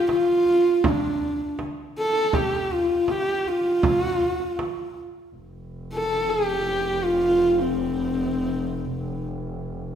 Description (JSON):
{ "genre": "mongolian traditional, Mongolian folk", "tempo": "80 BPM", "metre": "4/4", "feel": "straight", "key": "F gong mode", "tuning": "A4 = 440 Hz", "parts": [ { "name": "dark horsehead fiddle", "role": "melody", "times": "0.0-9.3 s", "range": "C4 to A4", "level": "-22 LUFS", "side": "equal", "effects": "none" }, { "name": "frame drum", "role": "percussion", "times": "0.1-4.8 s", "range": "none", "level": "-28 LUFS", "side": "right 3 dB", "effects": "none" }, { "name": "warm double bass", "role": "drone", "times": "5.4-10.0 s", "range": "F1", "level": "-31 LUFS", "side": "equal", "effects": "none" } ], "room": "moderate recital hall reverb, RT60 1.6 s", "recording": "recorded in a church or concert hall", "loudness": "-21 LUFS", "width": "side -9 dB against mid", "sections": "0.0-5.3 A section; 5.3-10.0 B section", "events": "none", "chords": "none" }